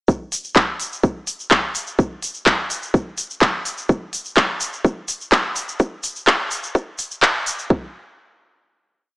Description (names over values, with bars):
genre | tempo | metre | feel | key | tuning
techno | 126 BPM | 4/4 | straight | none | none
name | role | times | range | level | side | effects
electronic kick drum | drums | 0.1-7.8 s | none | -17 LUFS | equal | small room ambience
egg shaker | percussion | 0.1-7.7 s | none | -27 LUFS | left 1 dB | none
house drum kit | drums | 0.3-7.6 s | handclaps, hi-hat | -18 LUFS | equal | small room ambience
room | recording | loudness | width
moderate lush hall reverb, RT60 1.9 s, digital ambience | dry, gritty hardware recording, transformer saturation, high-pass filter, small speaker sound | -18 LUFS | side -24 dB against mid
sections
0.1-7.7 build; 7.7-9.2 final hit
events
build-up 0.1-7.7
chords
none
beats
| 0.08 0.56 1.04 1.51 | 1.99 2.46 2.94 3.42 | 3.89 4.37 4.84 5.32 | 5.80 6.27 6.75 7.23 | 7.70